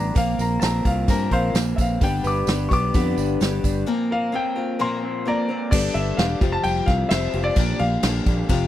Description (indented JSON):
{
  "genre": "folk rock and heartland rock",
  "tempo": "129 BPM",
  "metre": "4/4",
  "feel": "straight",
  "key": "unclear",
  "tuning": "A4 = 441 Hz",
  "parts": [
    { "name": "warm concert grand piano", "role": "melody", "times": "0.0-8.7 s", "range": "C5 to D6", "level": "-26 LUFS", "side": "left 1 dB", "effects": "none" },
    { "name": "picked acoustic archtop guitar", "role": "accompaniment", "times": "0.0-8.7 s", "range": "F2 to Bb4", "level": "-27 LUFS", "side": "left 7 dB", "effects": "none" },
    { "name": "electric guitar through a small old amp", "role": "riff", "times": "0.0-8.7 s", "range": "Bb2 to C5", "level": "-28 LUFS", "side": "right 2 dB", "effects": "spring reverb" },
    { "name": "fingered electric bass", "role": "bass", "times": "0.0-8.6 s", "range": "E1 to G2", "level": "-24 LUFS", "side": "equal", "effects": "none" },
    { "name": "natural country drum kit", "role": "drums", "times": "0.2-8.6 s", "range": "crash cymbal, hi-hat, kick drum, snare drum", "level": "-22 LUFS", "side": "right 1 dB", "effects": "none" },
    { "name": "tambourine", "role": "percussion", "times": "0.4-3.7 s", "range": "none", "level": "-40 LUFS", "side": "right 17 dB", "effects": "none" }
  ],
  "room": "little or no reverb",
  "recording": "dry, close 1970s-style studio recording",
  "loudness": "-19 LUFS",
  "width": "side -12 dB against mid",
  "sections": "0.0-5.7 A section; 5.7-8.7 B section",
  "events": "grand piano solo 0.0-5.7; break 3.9-5.7",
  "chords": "0.2 Bbsus2; 2.0 G; 3.9 Bbsus2; 5.7 Gadd9; 6.4 Fsus2; 7.6 Bb6",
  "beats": "| 0.16 0.62 1.08 1.55 | 2.01 2.48 2.94 3.40 | 3.87 4.33 4.79 5.26 | 5.72 6.18 6.65 7.11 | 7.58 8.04 8.50"
}